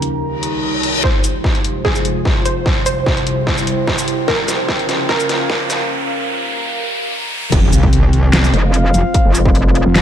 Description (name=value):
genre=heavy wobble dubstep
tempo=148 BPM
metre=4/4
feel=half-time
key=F minor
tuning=A4 = 441 Hz
part: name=wide unison pluck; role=melody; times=0.0-5.8 s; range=G4 to C5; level=-23 LUFS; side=right 1 dB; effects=digital delay
part: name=evolving wavetable pad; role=sustained chords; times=0.0-10.0 s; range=C2 to C5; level=-24 LUFS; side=left 1 dB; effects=chorus, built-in reverb, phaser, sidechain pumping
part: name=dubstep drum kit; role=drums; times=0.0-10.0 s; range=crash cymbal, handclaps, hi-hat, shaker, snare drum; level=-19 LUFS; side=equal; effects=high-pass filter on hats, high-pass filter on snare, high-pass filter on perc, high-pass filter on cymbals, high-pass filter on room
part: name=warbly tape-like pad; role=texture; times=0.0-10.0 s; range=C4 to C6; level=-23 LUFS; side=right 3 dB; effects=chorus, built-in reverb, sidechain pumping
part: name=reverse cymbal, riser and impact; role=sound effects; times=0.4-9.1 s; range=none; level=-24 LUFS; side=left 1 dB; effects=none
part: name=electronic kick drum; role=drums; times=1.0-9.5 s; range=none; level=-16 LUFS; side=equal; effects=distortion
part: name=metallic wobble bass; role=bass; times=7.5-10.0 s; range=F1 to C2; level=-13 LUFS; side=equal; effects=distortion, chorus, overdrive
part: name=mellow brass ensemble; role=stabs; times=7.7-9.5 s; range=C4 to F5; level=-22 LUFS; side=left 2 dB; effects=digital delay
part: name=metallic wobble bass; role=bass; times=8.5-9.8 s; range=F1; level=-14 LUFS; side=equal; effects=chorus, overdrive
room=light reverb, digital ambience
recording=dark, warm production, high-pass filter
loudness=-13 LUFS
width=side -10 dB against mid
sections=0.0-1.0 A section; 1.0-7.5 B section; 7.5-10.0 C section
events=reverse cymbal 0.4-1.0; build-up 1.0-7.5; drum fill 1.0-5.9; riser 1.0-7.5; filter sweep 1.0-7.5; break 5.9-7.5; drop 7.5-10.0; impact 7.5-9.1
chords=0.2 Cm; 1.0 Fm; 2.7 C; 4.3 Bbm/Db; 5.9 Eb; 7.5 F5